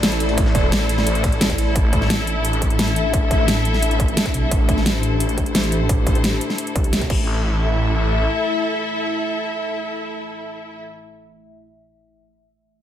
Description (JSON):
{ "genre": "dark technical drum and bass", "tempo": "174 BPM", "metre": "4/4", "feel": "straight", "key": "A minor", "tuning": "A4 = 437 Hz", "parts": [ { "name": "dark analog pad", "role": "sustained chords", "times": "0.0-10.8 s", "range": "A3 to E5", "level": "-26 LUFS", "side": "left 1 dB", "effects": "chorus, phaser, sidechain pumping" }, { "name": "snarling distorted saw bass", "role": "bass", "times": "0.0-8.3 s", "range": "E1 to C2", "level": "-21 LUFS", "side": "equal", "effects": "distortion, sidechain pumping" }, { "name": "breakbeat sampler-style drum kit", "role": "drums", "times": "0.0-1.7 s", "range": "ride cymbal, snare drum", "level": "-33 LUFS", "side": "right 2 dB", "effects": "high-pass filter on snare, small room reverb, high-pass filter on cymbals, high-pass filter on hats" }, { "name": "dubstep drum kit", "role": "drums", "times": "0.0-7.2 s", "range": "crash cymbal, hi-hat, snare drum", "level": "-22 LUFS", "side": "equal", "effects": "small room reverb" }, { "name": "clear studio string section", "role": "texture", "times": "0.0-10.8 s", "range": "E4 to E5", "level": "-25 LUFS", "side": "left 1 dB", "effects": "sidechain pumping" }, { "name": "electronic kick drum", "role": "drums", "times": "0.4-7.2 s", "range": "none", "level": "-20 LUFS", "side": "equal", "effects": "distortion, small room reverb" } ], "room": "light reverb, digital ambience", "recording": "none", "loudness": "-17 LUFS", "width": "side -10 dB against mid", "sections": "0.0-7.3 A section; 7.3-10.0 B section", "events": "filter sweep on detuned saw bass 0.0-7.3", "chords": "0.0 A5", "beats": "0.03 | 0.38 0.72 1.07 1.41 | 1.76 2.10 2.44 2.79 | 3.13 3.48 3.83 4.17 | 4.51 4.86 5.20 5.55 | 5.89 6.24 6.58 6.93 | 7.27 7.62 7.96 8.31 | 8.65 9.00 9.34 9.69" }